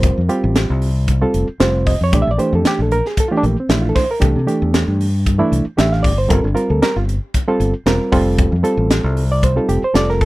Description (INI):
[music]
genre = electric jazz fusion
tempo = 115 BPM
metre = 4/4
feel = swing 54% on 16ths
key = unclear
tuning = A4 = 440 Hz
[part]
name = reed electric piano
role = accompaniment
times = 0.0-10.2 s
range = E3 to F5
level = -17 LUFS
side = right 2 dB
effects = none
[part]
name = fingered electric bass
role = bass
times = 0.0-10.2 s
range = E1 to C3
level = -17 LUFS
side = equal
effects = none
[part]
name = crisp fusion drum kit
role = drums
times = 0.0-10.2 s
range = hi-hat, kick drum, snare drum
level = -18 LUFS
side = equal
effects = none
[sound]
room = little or no reverb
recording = none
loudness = -14 LUFS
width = side -19 dB against mid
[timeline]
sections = 0.0-10.2 A section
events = none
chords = 0.0 F; 2.1 Bbmaj7; 4.2 C69; 6.3 Gm9; 8.1 F